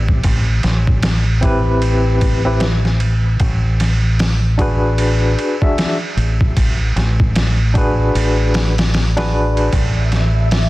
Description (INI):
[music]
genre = trip hop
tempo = 76 BPM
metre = 4/4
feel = swing 60% on 16ths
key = A dorian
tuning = A4 = 440 Hz
[part]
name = deep dub fingered electric bass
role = bass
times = 0.0-10.7 s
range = A1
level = -16 LUFS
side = equal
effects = none
[part]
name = trip hop sampler-style drum kit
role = drums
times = 0.1-10.7 s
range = hi-hat, kick drum, ride cymbal, snare drum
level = -18 LUFS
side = equal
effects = overdrive, vintage 12-bit sampler grit
[part]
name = barky tine electric piano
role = accompaniment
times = 1.4-9.7 s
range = C4 to E5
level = -20 LUFS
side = left 1 dB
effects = tremolo, tape echo
[part]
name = flickering grainy texture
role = texture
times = 10.0-10.7 s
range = E5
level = -26 LUFS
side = left 1 dB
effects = built-in reverb
[sound]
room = little or no reverb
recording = dense, heavily limited modern master, vinyl crackle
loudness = -13 LUFS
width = side -18 dB against mid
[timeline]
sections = 0.0-10.7 A section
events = none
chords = 0.0 Am7; 3.4 E7/A (rootless); 9.7 A5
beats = | 0.25 1.04 1.83 2.62 | 3.40 4.20 4.98 5.77 | 6.56 7.35 8.14 8.93 | 9.72 10.51